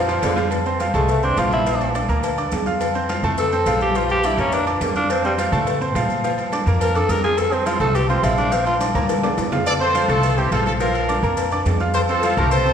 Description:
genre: latin, salsa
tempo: 210 BPM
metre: 4/4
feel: straight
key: F major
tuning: A4 = 439 Hz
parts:
  - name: bright grand piano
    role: accompaniment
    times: 0.0-12.7 s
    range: F3 to F6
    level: -23 LUFS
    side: right 1 dB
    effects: none
  - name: upright bass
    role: bass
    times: 0.0-12.7 s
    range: Bb1 to Bb2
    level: -24 LUFS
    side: equal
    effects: none
  - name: agogo bells and timbales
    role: percussion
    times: 0.1-12.7 s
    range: none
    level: -27 LUFS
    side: right 2 dB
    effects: none
  - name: congas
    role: percussion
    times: 0.1-12.7 s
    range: none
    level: -29 LUFS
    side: left 1 dB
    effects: none
  - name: cowbell and bongos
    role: percussion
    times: 0.1-12.7 s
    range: none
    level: -29 LUFS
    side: left 7 dB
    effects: none
  - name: maracas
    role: percussion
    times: 0.1-12.7 s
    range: none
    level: -38 LUFS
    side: left 3 dB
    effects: none
  - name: raspy tenor saxophone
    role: melody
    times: 0.9-8.7 s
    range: F3 to Bb4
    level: -21 LUFS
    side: equal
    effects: none
  - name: clear trumpet section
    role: melody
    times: 9.7-12.7 s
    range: E4 to D5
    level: -21 LUFS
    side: left 1 dB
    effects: none
room: wet scoring stage reverb, RT60 1.6 s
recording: recorded in a church or concert hall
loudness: -17 LUFS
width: side -8 dB against mid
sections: 0.5-9.7 A section; 9.7-12.7 B section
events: drum fill 0.0-0.5, 8.8-9.7; tenor saxophone solo 0.5-9.7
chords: 0.0 Bb (rootless); 0.5 F; 1.7 Bb; 2.8 F; 4.0 Bb; 5.1 F; 6.2 Bb; 7.4 F; 8.5 Bb; 9.7 F; 10.8 Bb; 11.9 F

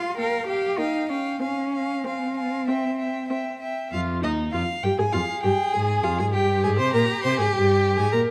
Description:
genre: quick classical-period movement for string quartet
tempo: 94-102 BPM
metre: 4/4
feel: rubato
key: F minor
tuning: A4 = 440 Hz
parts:
  - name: warm violin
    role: melody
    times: 0.0-8.2 s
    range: Eb5 to C6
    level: -32 LUFS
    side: equal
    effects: none
  - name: rich violin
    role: second line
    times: 0.0-8.3 s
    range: G4 to F5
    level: -31 LUFS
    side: equal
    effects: none
  - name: warm viola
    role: accompaniment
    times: 0.0-8.3 s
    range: Bb3 to C5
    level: -28 LUFS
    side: equal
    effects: none
  - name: warm cello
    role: bass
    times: 0.0-8.2 s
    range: Eb2 to Bb4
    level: -28 LUFS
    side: equal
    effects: none
room: moderate recital hall reverb, RT60 1.6 s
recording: none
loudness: -24 LUFS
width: mono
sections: 0.0-3.9 A section; 3.9-8.3 B section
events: none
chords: 0.2 Gm7b5/Bb; 1.4 Fm/C; 2.7 C; 3.9 Fm; 6.3 C5/G

